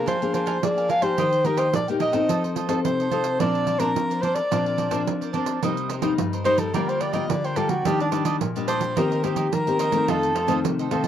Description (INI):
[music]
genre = samba and choro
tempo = 108 BPM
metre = 4/4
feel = straight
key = Bb major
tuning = A4 = 439 Hz
[part]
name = mellow soprano saxophone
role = melody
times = 0.0-10.6 s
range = D4 to F5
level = -24 LUFS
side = equal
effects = cassette tape, plate reverb
[part]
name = cavaquinho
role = accompaniment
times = 0.0-11.1 s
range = D4 to Ab5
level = -30 LUFS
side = right 6 dB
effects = none
[part]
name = nylon-string guitar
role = accompaniment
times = 0.0-11.1 s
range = F2 to A4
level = -25 LUFS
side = left 4 dB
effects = none
[part]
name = pandeiro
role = percussion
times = 0.1-11.1 s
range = none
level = -28 LUFS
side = right 8 dB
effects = none
[sound]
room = wet booth ambience, RT60 0.2 s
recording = home recording on cassette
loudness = -20 LUFS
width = side -10 dB against mid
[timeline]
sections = 0.0-5.6 A section; 5.6-11.1 B section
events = soprano saxophone solo 5.6-11.1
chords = 0.1 Bb7/F; 1.2 Eb; 2.3 F7; 3.4 Bbadd9; 5.6 Cm7; 6.7 Gm7/D; 7.9 Ebmaj7; 9.0 Cm7/Eb; 10.1 F7